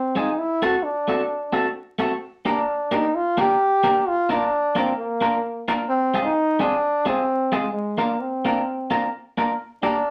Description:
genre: ska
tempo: 130 BPM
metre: 4/4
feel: swing 57% on 8ths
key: F dorian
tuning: A4 = 440 Hz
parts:
  - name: clear trombone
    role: melody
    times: 0.0-10.1 s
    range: Ab3 to G4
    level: -24 LUFS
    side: equal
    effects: none
  - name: clean electric guitar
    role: accompaniment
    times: 0.2-10.0 s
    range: Ab3 to Bb4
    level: -25 LUFS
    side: equal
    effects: none
room: wet studio ambience, RT60 0.5 s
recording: vinyl crackle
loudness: -22 LUFS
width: mono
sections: 0.0-5.9 A section; 5.9-10.1 A section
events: none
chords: 0.3 D7; 2.2 Gm; 4.0 Bb; 5.9 Fm; 7.7 Bb; 9.6 Gm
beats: | 0.35 0.81 1.27 1.73 | 2.19 2.65 3.11 3.57 | 4.03 4.49 4.95 5.41 | 5.87 6.33 6.79 7.26 | 7.72 8.18 8.64 9.10 | 9.56 10.02

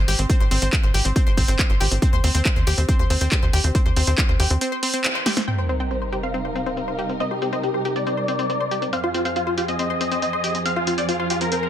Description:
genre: uplifting trance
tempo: 139 BPM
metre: 4/4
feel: straight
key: C minor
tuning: A4 = 438 Hz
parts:
  - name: tight sequencer bass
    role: bass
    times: 0.0-4.6 s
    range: Ab1 to Eb2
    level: -21 LUFS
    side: equal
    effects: sidechain pumping
  - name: analog pluck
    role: arpeggios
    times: 0.1-11.7 s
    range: C4 to C5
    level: -27 LUFS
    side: left 3 dB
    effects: chorus, sidechain pumping, tape echo
  - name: punchy analog drum machine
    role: drums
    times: 0.1-11.6 s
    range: crash cymbal, handclaps, hi-hat, snare drum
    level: -25 LUFS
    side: right 1 dB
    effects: low-pass filter on hats, low-pass filter on snare, low-pass filter on cymbals
  - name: electronic kick drum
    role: drums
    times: 0.3-4.3 s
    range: none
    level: -20 LUFS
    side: equal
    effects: none
  - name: big supersaw lead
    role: melody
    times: 5.5-11.7 s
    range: F4 to G5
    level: -24 LUFS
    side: left 1 dB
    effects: sidechain pumping, low-pass filter, tape echo
  - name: wide unison pluck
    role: second line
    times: 5.5-11.7 s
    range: F4 to G5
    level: -31 LUFS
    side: right 1 dB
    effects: phaser, sidechain pumping, tape echo
  - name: dark studio string section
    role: sustained chords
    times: 5.5-11.7 s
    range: F2 to Bb4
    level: -28 LUFS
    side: right 2 dB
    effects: vintage 12-bit sampler grit, sidechain pumping
  - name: sub drop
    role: sound effects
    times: 5.5-7.2 s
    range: none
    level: -28 LUFS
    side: equal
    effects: none
room: light reverb, digital ambience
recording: dense, heavily limited modern master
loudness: -19 LUFS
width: side -10 dB against mid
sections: 0.0-5.5 A section; 5.5-11.7 B section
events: break 4.6-5.5; band accent 5.0; drum fill 5.3; impact 5.5-7.2; filter sweep on drum 5.5-11.7; filter sweep on supersaw synth 5.5-11.7; filter sweep on synth pluck 5.5-11.7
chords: 0.0 Ab; 2.0 N.C.; 5.5 Cm7; 8.9 Fm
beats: | 0.30 0.73 1.16 1.59 | 2.02 2.46 2.89 3.32 | 3.75 4.18 4.61 5.04 | 5.48 5.91 6.34 6.77 | 7.20 7.63 8.07 8.50 | 8.93 9.36 9.79 10.22 | 10.66 11.09 11.52

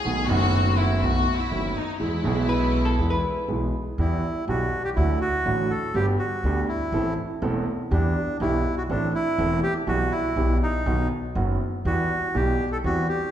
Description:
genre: tango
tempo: 122 BPM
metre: 4/4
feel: rubato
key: E major, E minor from 4.0 s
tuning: A4 = 440 Hz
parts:
  - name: clear studio violin section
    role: second line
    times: 0.0-3.4 s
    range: D#4 to G#4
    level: -27 LUFS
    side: left 3 dB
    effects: none
  - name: warm concert grand piano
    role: accompaniment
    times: 0.0-13.1 s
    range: E1 to A4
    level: -25 LUFS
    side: right 1 dB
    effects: none
  - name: upright bass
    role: bass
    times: 0.1-13.0 s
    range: E1 to E2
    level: -27 LUFS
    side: equal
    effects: none
  - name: vintage hollow-body jazz guitar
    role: second line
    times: 2.5-3.9 s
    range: A4 to B4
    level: -28 LUFS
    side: left 2 dB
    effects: none
  - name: bandoneon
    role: melody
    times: 4.0-13.3 s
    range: D4 to A4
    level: -26 LUFS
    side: right 1 dB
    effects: none
room: wet recital hall reverb, RT60 1.7 s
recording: recorded in a church or concert hall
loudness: -22 LUFS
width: side -10 dB against mid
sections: 0.0-4.0 A section; 4.0-13.3 B section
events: violin section solo 0.0-4.0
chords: 0.0 B7; 2.0 E; 4.0 Em; 5.0 D; 5.9 G; 6.9 Am; 7.9 Em; 8.9 Am; 9.9 Em/B; 10.9 B; 11.9 Em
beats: | 0.04 0.53 1.02 1.51 | 2.00 2.49 2.99 3.48 | 3.98 4.47 4.97 5.46 | 5.95 6.44 6.93 7.42 | 7.91 8.40 8.89 9.38 | 9.87 10.37 10.86 11.36 | 11.85 12.35 12.84

